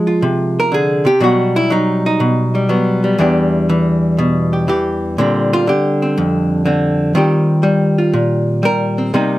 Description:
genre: solo jazz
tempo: 122 BPM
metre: 4/4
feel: swing 69% on 8ths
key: unclear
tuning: A4 = 440 Hz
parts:
  - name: archtop guitar, miked and amplified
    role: solo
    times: 0.0-9.4 s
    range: E2 to C5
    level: -12 LUFS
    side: equal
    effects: none
room: light reverb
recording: close, detailed microphones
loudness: -12 LUFS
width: side -16 dB against mid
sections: 0.0-9.4 A section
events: hollow-body jazz guitar solo 0.0-9.4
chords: 0.0 Fm7; 1.2 B; 3.2 Em7; 5.2 Bb69; 7.1 Eb69

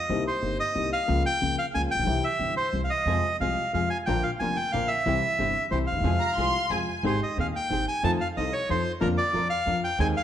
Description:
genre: tango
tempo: 182 BPM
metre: 3/4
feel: rubato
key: F minor, Ab major from 7.0 s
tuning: A4 = 440 Hz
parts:
  - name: bandoneon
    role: melody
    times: 0.0-10.2 s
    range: Bb4 to A5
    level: -26 LUFS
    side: equal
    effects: slapback echo
  - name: dark concert grand piano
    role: accompaniment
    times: 0.1-10.1 s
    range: Eb1 to Ab4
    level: -29 LUFS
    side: left 4 dB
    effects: none
  - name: upright bass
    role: bass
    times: 0.1-10.1 s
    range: F1 to F2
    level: -31 LUFS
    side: right 2 dB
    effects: none
  - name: dark studio string section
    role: stabs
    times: 3.1-10.1 s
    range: C4 to Bb4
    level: -36 LUFS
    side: right 1 dB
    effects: none
  - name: warm studio violin section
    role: second line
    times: 6.2-7.0 s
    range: Ab5 to C6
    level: -29 LUFS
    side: equal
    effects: none
room: moderate recital hall reverb, RT60 1.6 s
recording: close, detailed microphones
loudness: -24 LUFS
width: side -10 dB against mid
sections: 0.0-7.0 A section; 7.0-10.2 B section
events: none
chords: 0.1 Cm7; 1.1 Bbm/Db; 2.1 C; 3.1 Fm; 4.1 Bb; 5.1 C; 6.0 Fm; 7.0 Abmaj7; 8.0 F7; 9.0 Bb/F

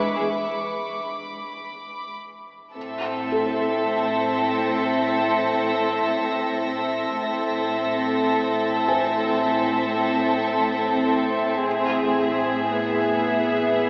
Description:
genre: cinematic, suspense film score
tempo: 54 BPM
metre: 4/4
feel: straight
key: A harmonic minor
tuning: A4 = 440 Hz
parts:
  - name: warm studio violin section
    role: melody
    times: 0.0-13.9 s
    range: E5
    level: -27 LUFS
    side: equal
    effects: none
  - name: dark studio violin section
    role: second line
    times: 0.0-13.9 s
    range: G#4 to B4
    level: -25 LUFS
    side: equal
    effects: none
  - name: warm studio viola section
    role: accompaniment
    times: 0.0-13.9 s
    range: G#3 to C4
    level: -26 LUFS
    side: equal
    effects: none
  - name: dark studio violin section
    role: texture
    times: 0.0-11.1 s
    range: B5 to Bb6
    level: -33 LUFS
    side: equal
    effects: none
  - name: felt-muted upright piano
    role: texture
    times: 0.0-13.9 s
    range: A4 to B5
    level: -32 LUFS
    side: equal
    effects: none
  - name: warm studio cello section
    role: bass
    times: 0.2-13.9 s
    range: E2 to A2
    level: -30 LUFS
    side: equal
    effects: none
  - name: dark studio double bass section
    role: bass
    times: 2.8-13.9 s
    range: A1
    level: -38 LUFS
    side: equal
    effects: none
room: wet cathedral reverb, RT60 4.5 s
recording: recorded in a church or concert hall, AM radio sound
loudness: -20 LUFS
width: side -34 dB against mid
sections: 0.0-2.8 A section; 2.8-13.9 B section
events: break 0.5-2.8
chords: 0.0 E7(no3) (rootless); 2.8 Am; 11.7 E/A

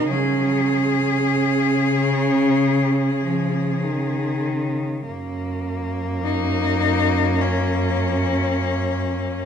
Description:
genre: classical, lyrical piece for cello ensemble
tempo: 47-53 BPM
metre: 4/4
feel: rubato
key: F# major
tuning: A4 = 437 Hz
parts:
  - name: clear cello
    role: melody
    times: 0.0-9.5 s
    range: C#4 to G#4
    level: -23 LUFS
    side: left 8 dB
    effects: none
  - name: warm cello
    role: second line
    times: 0.0-9.5 s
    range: C#4 to D#4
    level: -24 LUFS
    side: right 6 dB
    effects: none
  - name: rich cello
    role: accompaniment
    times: 0.0-9.5 s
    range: C#3 to A#3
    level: -25 LUFS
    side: left 3 dB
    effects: none
  - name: warm cello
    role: bass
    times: 0.0-9.5 s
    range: F#2 to C#3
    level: -24 LUFS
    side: right 1 dB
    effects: none
room: wet recital hall reverb, RT60 1.6 s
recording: none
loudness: -18 LUFS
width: side -8 dB against mid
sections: 0.0-5.1 A section; 5.1-9.5 B section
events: none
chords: 0.1 C#sus4; 2.6 C#; 5.1 F#

